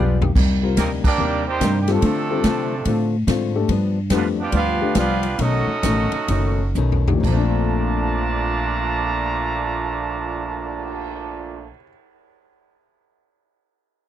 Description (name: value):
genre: jazz, big band swing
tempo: 122-144 BPM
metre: 4/4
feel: swing 64% on 8ths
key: Bb major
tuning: A4 = 440 Hz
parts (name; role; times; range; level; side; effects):
- clear trumpet section; melody; 0.0-11.7 s; G3 to Bb5; -25 LUFS; right 2 dB; none
- brilliant trombone section; second line; 0.0-11.7 s; Bb2 to G4; -27 LUFS; right 8 dB; none
- archtop guitar, miked and amplified; accompaniment; 0.0-11.9 s; G2 to Ab4; -26 LUFS; left 7 dB; none
- upright bass; bass; 0.0-11.7 s; F#1 to D3; -22 LUFS; equal; none
- swinging big-band drum kit; drums; 0.2-11.1 s; crash cymbal, cymbal swell, hi-hat, kick drum, ride cymbal, snare drum, toms; -25 LUFS; equal; none
- warm grand piano; accompaniment; 0.6-11.9 s; Bb2 to B4; -25 LUFS; left 7 dB; none
room: little or no reverb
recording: dry, close 1970s-style studio recording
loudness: -18 LUFS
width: side -11 dB against mid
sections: 0.4-7.2 A section; 7.2-11.2 B section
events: drum fill 0.0-0.4, 6.8-7.2; band accent 1.0; slowing down 3.7-7.2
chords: 0.4 Cm7; 2.0 Dm7; 3.7 G7; 5.4 B9; 7.2 Bbmaj7